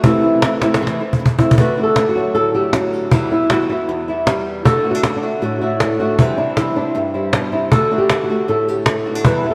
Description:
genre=flamenco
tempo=156 BPM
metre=4/4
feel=straight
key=unclear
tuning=A4 = 439 Hz
part: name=flamenco guitar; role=melody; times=0.0-9.5 s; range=E2 to B4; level=-20 LUFS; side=equal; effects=none
part: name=flamenco guitar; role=stabs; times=0.0-9.5 s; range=E2 to F#4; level=-24 LUFS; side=equal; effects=lush chorus, tape echo
part: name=cajon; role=percussion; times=0.0-9.5 s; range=none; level=-20 LUFS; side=equal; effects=none
room=wet lush hall reverb, RT60 3.0 s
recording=dreamy mix soaked in reverb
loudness=-17 LUFS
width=mono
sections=0.0-1.6 A section; 1.6-9.5 B section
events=drum fill 0.6-1.6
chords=0.0 Am/C; 1.6 D; 3.1 Em; 4.7 D; 6.2 C; 7.7 D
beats=| 0.04 0.43 0.81 1.20 | 1.58 1.97 2.35 2.73 | 3.12 3.50 3.88 4.27 | 4.65 5.04 5.42 5.80 | 6.18 6.57 6.95 7.33 | 7.72 8.10 8.48 8.87 | 9.25

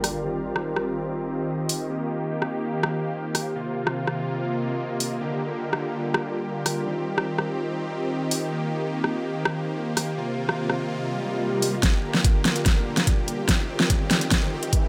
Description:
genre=heavy wobble dubstep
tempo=145 BPM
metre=4/4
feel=half-time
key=unclear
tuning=A4 = 443 Hz
part: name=supersaw chords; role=sustained chords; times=0.0-14.9 s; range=C3 to G4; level=-31 LUFS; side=equal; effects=sidechain pumping, low-pass filter
part: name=dubstep drum kit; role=drums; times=0.0-14.8 s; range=hi-hat, rim click, snare drum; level=-26 LUFS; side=equal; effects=overdrive, studio reverb
part: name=impact, swell and riser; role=sound effects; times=0.0-0.2, 11.1-14.9 s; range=none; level=-36 LUFS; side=equal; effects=none
part: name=ethereal airy pad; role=texture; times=0.0-14.9 s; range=Eb3 to F5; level=-33 LUFS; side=equal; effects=ensemble chorus, built-in reverb, sidechain pumping
part: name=electronic kick drum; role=drums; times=11.8-14.8 s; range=none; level=-24 LUFS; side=equal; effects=overdrive, studio reverb
room=light reverb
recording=none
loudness=-25 LUFS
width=mono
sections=0.0-11.8 A section; 11.8-14.9 B section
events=impact 0.0; filter sweep on supersaw synth 0.0-11.8; swell 11.1-11.8; build-up 11.8-14.9; drum fill 11.8-14.9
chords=0.2 Eb; 3.6 Fsus4; 5.2 Gm; 6.9 Eb; 10.2 Fsus4; 11.8 Gm; 13.5 Eb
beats=| 0.24 0.66 1.07 1.49 | 1.90 2.31 2.73 3.14 | 3.56 3.97 4.38 4.80 | 5.21 5.62 6.04 6.45 | 6.87 7.28 7.69 8.11 | 8.52 8.93 9.35 9.76 | 10.18 10.59 11.00 11.42 | 11.83 12.24 12.66 13.07 | 13.49 13.90 14.31 14.73

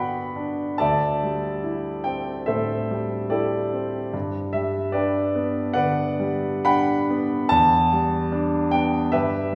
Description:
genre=classical, impressionist solo piano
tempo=63-75 BPM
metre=4/4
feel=rubato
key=G major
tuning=A4 = 440 Hz
part: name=clear concert grand piano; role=solo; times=0.0-9.6 s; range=D2 to B5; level=-23 LUFS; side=equal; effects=none
room=wet recital hall reverb, RT60 1.6 s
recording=recorded in a church or concert hall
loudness=-23 LUFS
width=mono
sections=0.0-9.6 A section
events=none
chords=0.0 Gmaj9; 0.8 D9sus4; 4.1 Gmaj7; 7.5 Em7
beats=| 0.81 1.65 2.48 3.32 | 4.14 4.96 5.76 6.66 | 7.51 8.33 9.13

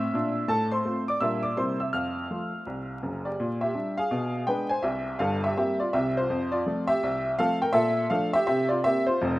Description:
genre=jazz, stride piano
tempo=165 BPM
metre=4/4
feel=swing 62% on 8ths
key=F major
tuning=A4 = 440 Hz
part: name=clear upright piano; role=solo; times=0.0-9.4 s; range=F1 to F6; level=-24 LUFS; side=equal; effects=none
room=moderate plate reverb, RT60 3.4 s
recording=rough home demo mix, vinyl crackle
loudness=-24 LUFS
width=side -17 dB against mid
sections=0.0-3.4 A section; 3.4-9.4 B section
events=none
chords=0.5 F/A; 1.2 Gm/Bb; 1.6 C7; 1.9 F; 3.4 Gm/Bb; 4.1 Bdim7; 4.8 C7; 6.3 F; 7.7 Bbmaj7; 8.5 C5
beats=0.11 | 0.48 0.84 1.21 1.57 | 1.93 2.30 2.66 3.02 | 3.39 3.75 4.12 4.48 | 4.84 5.21 5.57 5.93 | 6.30 6.66 7.02 7.38 | 7.75 8.11 8.47 8.84 | 9.20

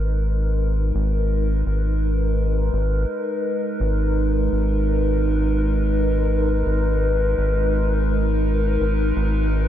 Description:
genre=ambient dub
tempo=84 BPM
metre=4/4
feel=swing 54% on 16ths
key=G# minor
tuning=A4 = 440 Hz
part: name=warbly tape-like pad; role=sustained chords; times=0.0-9.7 s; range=G#3 to B4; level=-23 LUFS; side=equal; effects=chorus, built-in reverb, phaser
part: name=round analog bass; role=bass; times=0.0-9.7 s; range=G#1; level=-20 LUFS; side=equal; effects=none
room=light reverb, digital ambience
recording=none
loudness=-19 LUFS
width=side -11 dB against mid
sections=0.0-9.7 A section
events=none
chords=0.0 G#madd9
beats=| 0.59 1.31 2.02 2.73 | 3.45 4.16 4.88 5.59 | 6.31 7.02 7.74 8.45 | 9.16

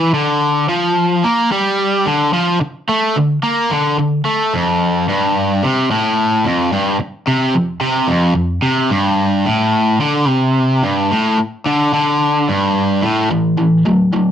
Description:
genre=rock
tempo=109 BPM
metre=4/4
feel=straight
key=unclear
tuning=A4 = 440 Hz
part: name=cranked stack guitar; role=solo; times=0.0-14.3 s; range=F2 to Bb3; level=-13 LUFS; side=equal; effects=overdrive
room=moderate studio reverb, RT60 0.6 s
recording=none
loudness=-13 LUFS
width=side -9 dB against mid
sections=0.0-13.3 A section; 13.3-14.3 B section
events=none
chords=0.1 D5; 4.5 F5; 8.9 G5; 13.3 A5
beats=| 0.15 0.70 1.25 1.79 | 2.34 2.89 3.44 3.99 | 4.54 5.09 5.63 6.18 | 6.73 7.28 7.83 8.37 | 8.92 9.47 10.02 10.56 | 11.11 11.66 12.21 12.76 | 13.31 13.86

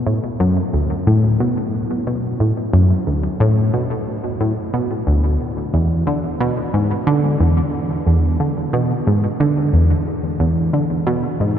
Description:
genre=ambient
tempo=90 BPM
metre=4/4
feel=straight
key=B dorian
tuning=A4 = 439 Hz
part: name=tight sequenced synth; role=solo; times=0.0-11.6 s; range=D2 to D3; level=-16 LUFS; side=equal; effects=chorus, analog delay
room=wet huge ambient reverb, RT60 7.9 s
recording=dark, warm production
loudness=-16 LUFS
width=side -9 dB against mid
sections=0.0-11.6 A section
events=none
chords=none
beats=| 0.07 0.73 1.40 2.07 | 2.73 3.40 4.07 4.74 | 5.40 6.07 6.74 7.40 | 8.07 8.73 9.40 10.07 | 10.73 11.40

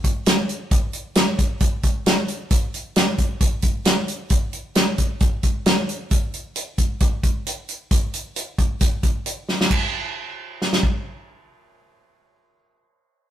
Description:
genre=rock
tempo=133 BPM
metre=4/4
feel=straight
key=none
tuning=none
part: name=natural country drum kit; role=drums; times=0.0-10.9 s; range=crash cymbal, hi-hat, kick drum, snare drum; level=-19 LUFS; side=equal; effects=none
room=light reverb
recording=rough rehearsal-room recording, tube saturation, lossy compression artefacts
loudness=-19 LUFS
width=side -11 dB against mid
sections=0.0-9.7 A section; 9.7-13.3 B section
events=drum fill 9.5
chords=none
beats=0.27 | 0.71 1.16 1.61 2.06 | 2.51 2.96 3.41 3.86 | 4.31 4.76 5.21 5.66 | 6.11 6.56 7.01 7.46 | 7.91 8.36 8.81 9.26 | 9.71 10.16 10.61

